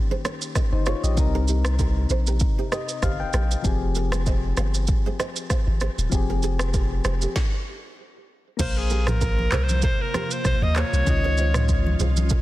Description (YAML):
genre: afrobeats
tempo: 97 BPM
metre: 4/4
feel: swing 55% on 16ths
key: F minor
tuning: A4 = 440 Hz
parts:
  - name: soft electric-piano-like synth keys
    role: accompaniment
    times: 0.0-12.4 s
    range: C3 to G5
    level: -31 LUFS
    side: left 6 dB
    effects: chorus
  - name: nylon-string guitar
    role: riff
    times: 0.1-12.4 s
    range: Eb4 to F5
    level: -33 LUFS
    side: right 6 dB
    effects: tape echo
  - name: afro-pop drum kit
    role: drums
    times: 0.2-12.4 s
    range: crash cymbal, handclaps, kick drum, rim click, shaker, snare drum, toms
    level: -25 LUFS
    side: equal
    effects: soft clipping on snare
  - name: punchy sub bass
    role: bass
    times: 0.7-12.3 s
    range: Eb1 to Eb2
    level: -23 LUFS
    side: equal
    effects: none
  - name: bright alto saxophone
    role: melody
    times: 8.6-12.0 s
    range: Ab4 to Eb5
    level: -27 LUFS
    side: equal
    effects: tape echo
  - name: ethereal airy pad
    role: sustained chords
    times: 9.4-12.4 s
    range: C3 to F4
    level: -34 LUFS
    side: right 2 dB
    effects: ensemble chorus, built-in reverb, tremolo
  - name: congas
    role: percussion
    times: 8.6-12.4 s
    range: none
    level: -31 LUFS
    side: right 1 dB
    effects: none
room: digital ambience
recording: dense, heavily limited modern master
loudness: -20 LUFS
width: side -16 dB against mid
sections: 0.0-8.6 A section; 8.6-12.4 B section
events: synth keys fill 2.4-3.6; stop 7.4-8.6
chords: 0.0 Eb7; 1.2 Cm7; 3.6 Fmadd9; 8.6 Bbsus2; 11.1 Dbadd9